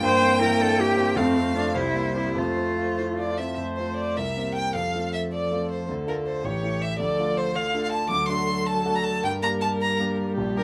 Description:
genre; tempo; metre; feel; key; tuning
quick classical-period movement for piano quartet; 105 BPM (dotted quarters); 6/8; rubato; F major; A4 = 441 Hz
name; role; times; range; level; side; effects
rich violin; melody; 0.0-10.6 s; Bb4 to D6; -30 LUFS; equal; none
warm cello; second line; 0.0-10.6 s; D3 to C5; -29 LUFS; equal; none
clear concert grand piano; accompaniment; 0.0-10.6 s; A1 to G4; -32 LUFS; equal; none
rich viola; accompaniment; 0.0-10.6 s; G3 to C5; -32 LUFS; equal; none
room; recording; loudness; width
light reverb; close, detailed microphones; -25 LUFS; mono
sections
0.0-3.6 A section; 3.6-10.6 B section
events
none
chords
0.0 C7/G; 1.2 F; 1.8 C7; 2.4 F; 4.2 C7; 4.8 F; 5.9 Dm; 6.4 A7; 7.0 Dm; 8.1 D7; 9.2 Gm

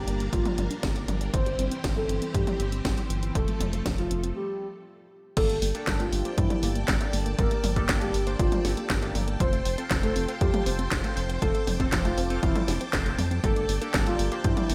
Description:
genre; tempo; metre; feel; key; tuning
italo disco; 119 BPM; 4/4; straight; G dorian; A4 = 440 Hz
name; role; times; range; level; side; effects
soft octave-layered synth lead; melody; 0.0-14.7 s; E4 to C5; -34 LUFS; equal; chorus, phaser, cassette tape, delay
string machine, full ensemble; sustained chords; 0.0-14.7 s; E3 to D6; -39 LUFS; equal; ensemble chorus
unison pluck; arpeggios; 0.0-14.7 s; E3 to D4; -39 LUFS; equal; delay
round analog bass; bass; 0.0-14.7 s; F1 to G2; -32 LUFS; equal; none
house drum kit; drums; 0.1-14.7 s; crash cymbal, handclaps, hi-hat, snare drum, toms; -34 LUFS; equal; gated reverb
electronic kick drum; drums; 0.3-14.5 s; none; -31 LUFS; equal; none
chorused polysynth; stabs; 5.4-14.7 s; Bb3 to F5; -38 LUFS; equal; phaser
room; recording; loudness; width
light reverb, digital ambience; none; -27 LUFS; mono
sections
0.0-5.4 A section; 5.4-14.7 B section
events
break 4.4-5.4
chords
0.0 Gm; 1.3 C/G; 3.4 F; 5.4 Gmadd9; 9.4 F; 13.4 Gmadd9

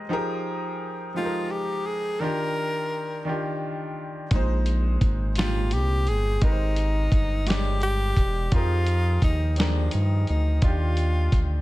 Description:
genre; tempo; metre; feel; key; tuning
slow six-eight R&B; 57 BPM (dotted quarters); 6/8; straight; F dorian; A4 = 441 Hz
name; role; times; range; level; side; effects
warm concert grand piano; accompaniment; 0.0-11.6 s; Bb2 to Eb5; -30 LUFS; equal; none
breathy tenor saxophone; melody; 1.2-11.6 s; D4 to Bb4; -28 LUFS; equal; none
round analog bass; bass; 4.3-11.6 s; E1 to G2; -23 LUFS; equal; none
dusty soul sampler-style drum kit; drums; 4.3-11.5 s; hi-hat, kick drum, snare drum; -24 LUFS; equal; vintage 12-bit sampler grit
room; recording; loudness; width
little or no reverb; none; -22 LUFS; side -17 dB against mid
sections
0.0-11.6 A section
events
none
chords
0.1 Fm11; 2.2 Ebmaj9; 4.3 Bb9sus4; 6.4 Abmaj9; 8.5 Fm11; 10.6 Ebmaj9

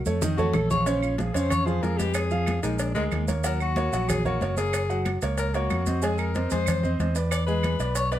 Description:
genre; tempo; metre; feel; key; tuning
Afro-Cuban jazz; 186 BPM; 4/4; straight; Bb minor; A4 = 440 Hz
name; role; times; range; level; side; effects
warm baby grand piano; accompaniment; 0.1-8.2 s; Db3 to Ab5; -28 LUFS; right 2 dB; none
fingered electric bass; bass; 0.1-8.2 s; Gb1 to F2; -27 LUFS; right 1 dB; none
bongos and cowbell; percussion; 0.1-8.2 s; none; -36 LUFS; left 2 dB; none
congas; percussion; 0.1-8.2 s; none; -32 LUFS; equal; none
maracas; percussion; 0.1-8.2 s; none; -39 LUFS; right 7 dB; none
breathy tenor saxophone; second line; 0.4-8.2 s; Ab3 to D5; -29 LUFS; left 4 dB; none
claves; percussion; 0.5-7.8 s; none; -37 LUFS; right 9 dB; none
room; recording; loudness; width
light reverb; none; -23 LUFS; side -12 dB against mid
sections
0.9-8.2 A section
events
drum fill 0.0-0.9; tenor saxophone solo 0.0-8.2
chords
0.2 F7alt; 0.9 Bbm7; 2.2 Fdim; 2.8 Bb7; 3.4 Ebm7; 4.7 Gbadd9; 6.0 Fm7; 7.3 E7

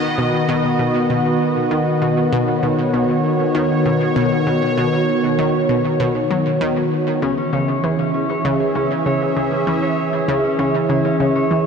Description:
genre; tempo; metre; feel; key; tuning
ambient, sequencer-driven space music; 98 BPM; 4/4; straight; unclear; A4 = 435 Hz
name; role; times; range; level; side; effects
sweeping resonant pad; sustained chords; 0.0-11.7 s; D#3 to E5; -17 LUFS; equal; chorus, shimmer reverb
analog pluck; riff; 0.0-11.7 s; B2 to F#3; -22 LUFS; equal; chorus, tape echo, shimmer reverb
concert harp; arpeggios; 7.2-11.7 s; C#4 to C#5; -25 LUFS; moving between left 6 dB and right 1 dB; auto-pan, tape echo, shimmer reverb
room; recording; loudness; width
wet huge ambient reverb, RT60 7.2 s; dreamy mix soaked in reverb, cassette tape; -16 LUFS; side -6 dB against mid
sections
0.0-11.7 A section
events
none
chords
0.0 B; 7.2 C#m

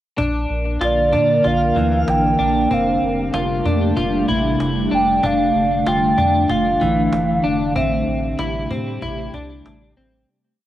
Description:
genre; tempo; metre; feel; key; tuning
dream pop; 95 BPM; 4/4; straight; unclear; A4 = 441 Hz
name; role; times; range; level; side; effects
ethereal airy pad; sustained chords; 0.6-10.3 s; C3 to Bb4; -21 LUFS; equal; ensemble chorus, built-in reverb, cassette tape
clean electric guitar; arpeggios; 0.2-10.3 s; E3 to F4; -23 LUFS; left 2 dB; analog chorus, cassette tape, tape echo
warm sub bass; bass; 0.2-10.3 s; F1 to Bb2; -25 LUFS; equal; none
cajon; drums; 0.2-10.1 s; none; -29 LUFS; equal; cassette tape
twinkling granular texture; texture; 1.0-2.1 s; F5; -37 LUFS; right 1 dB; built-in reverb, cassette tape, tape echo
hollow clarinet-like synth lead; melody; 0.8-8.4 s; D5 to G5; -19 LUFS; right 2 dB; chorus, cassette tape, tape echo
room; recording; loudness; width
moderate spring reverb, RT60 2.6 s; home recording on cassette; -16 LUFS; side -13 dB against mid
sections
0.2-10.3 verse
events
fade-out 7.8-10.3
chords
0.2 Bb; 2.7 Fadd9; 5.2 Dmadd9/F; 7.8 Am7

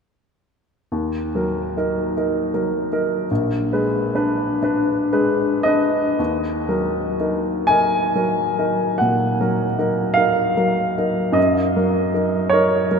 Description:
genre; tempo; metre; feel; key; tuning
classical, romantic nocturne for solo piano; 35-54 BPM (dotted quarters); 12/8; rubato; Eb minor; A4 = 441 Hz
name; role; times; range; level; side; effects
clear upright piano; solo; 0.9-13.0 s; Bb1 to Ab5; -17 LUFS; equal; none
room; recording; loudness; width
wet cathedral reverb, RT60 6.0 s; in a vast, echoing space; -17 LUFS; side -6 dB against mid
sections
0.9-6.2 A section; 6.2-13.0 B section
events
none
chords
0.9 Ebm; 3.3 Bb7b9; 6.2 Ebm; 11.4 Ebm/Gb

